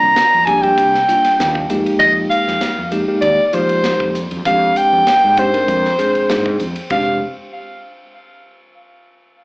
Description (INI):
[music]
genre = electric jazz fusion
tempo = 98 BPM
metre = 4/4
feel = straight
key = F dorian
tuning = A4 = 440 Hz
[part]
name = breathy soprano saxophone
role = melody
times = 0.0-7.2 s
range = C5 to Bb5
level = -14 LUFS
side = equal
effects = none
[part]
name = bell-like tine electric piano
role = accompaniment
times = 0.0-7.2 s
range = G3 to Bb4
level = -20 LUFS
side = equal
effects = slow stereo tremolo, slapback echo
[part]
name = fretless electric bass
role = bass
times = 0.0-7.2 s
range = F1 to F3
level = -24 LUFS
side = equal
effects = none
[part]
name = modern studio drum kit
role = drums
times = 0.2-7.1 s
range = crash cymbal, hi-hat, kick drum, ride cymbal, snare drum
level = -26 LUFS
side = equal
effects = none
[sound]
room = light reverb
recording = live gig heard through the venue's PA, club reverb, AM radio sound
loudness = -12 LUFS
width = side -26 dB against mid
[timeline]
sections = 0.0-6.9 A section; 6.9-9.4 B section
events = none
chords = 0.0 C9sus4; 1.7 Fm11; 4.5 Fm69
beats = 0.17 0.79 1.40 | 2.01 2.63 3.24 3.85 | 4.46 5.08 5.69 6.30 | 6.92